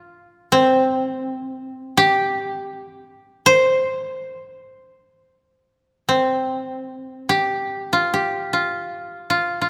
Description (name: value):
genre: japanese traditional, Japanese chamber music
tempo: 70-86 BPM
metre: 4/4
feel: rubato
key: unclear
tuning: A4 = 440 Hz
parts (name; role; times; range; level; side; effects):
- koto; solo; 0.0-9.7 s; C4 to C5; -20 LUFS; equal; none
room: moderate concert hall reverb, RT60 2.2 s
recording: none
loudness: -20 LUFS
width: mono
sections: 0.0-8.1 A section; 8.1-9.7 B section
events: none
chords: none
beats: 0.51 1.25 | 1.96 2.68 3.43 4.18 | 4.93 5.69 6.47 7.30 | 8.13 8.92 9.68